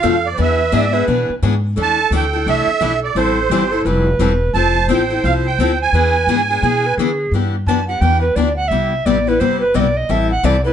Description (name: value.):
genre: acoustic string swing (jazz manouche).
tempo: 173 BPM.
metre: 4/4.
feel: swing 62% on 8ths.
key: E minor from 7.3 s.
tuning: A4 = 436 Hz.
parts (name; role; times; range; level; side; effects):
musette accordion; melody; 0.0-6.9 s; C5 to A5; -17 LUFS; right 6 dB; none.
bright reedy tenor recorder; second line; 0.0-10.7 s; G4 to A5; -20 LUFS; right 3 dB; none.
picked steel-string acoustic guitar; accompaniment; 0.0-10.7 s; B2 to A4; -19 LUFS; left 6 dB; none.
upright bass; bass; 0.0-10.7 s; E1 to D3; -19 LUFS; equal; none.
room: moderate studio reverb, RT60 0.7 s.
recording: nothing above 10.5 kHz.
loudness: -14 LUFS.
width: side -9 dB against mid.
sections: 0.0-7.3 A section; 7.3-10.7 B section.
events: recorder solo 7.3-10.7.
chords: 0.4 E7; 1.8 E7sus4; 3.2 Am7; 4.5 Fmaj7; 5.9 E7; 7.3 Em7; 8.7 Cmaj7; 10.1 Am7.